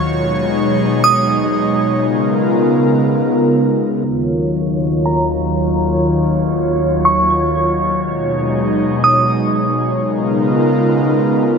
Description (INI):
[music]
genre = hip hop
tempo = 120 BPM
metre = 4/4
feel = half-time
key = Eb minor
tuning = A4 = 438 Hz
[part]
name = airy breathy pad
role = sustained chords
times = 0.0-11.6 s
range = Eb2 to Db5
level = -14 LUFS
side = equal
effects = chorus, low-pass filter
[part]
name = glassy synth bell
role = melody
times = 1.0-2.0, 5.1-10.0 s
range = Bb5 to D#6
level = -17 LUFS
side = right 2 dB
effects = chorus, low-pass filter, tape echo
[sound]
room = moderate lush hall reverb, RT60 3.1 s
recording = none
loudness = -13 LUFS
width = side -5 dB against mid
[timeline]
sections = 0.0-4.0 A section; 4.0-11.6 B section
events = filter sweep 4.0-11.6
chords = 0.0 B6; 2.0 Db13; 4.0 Ebm9; 8.0 B6; 10.0 Db13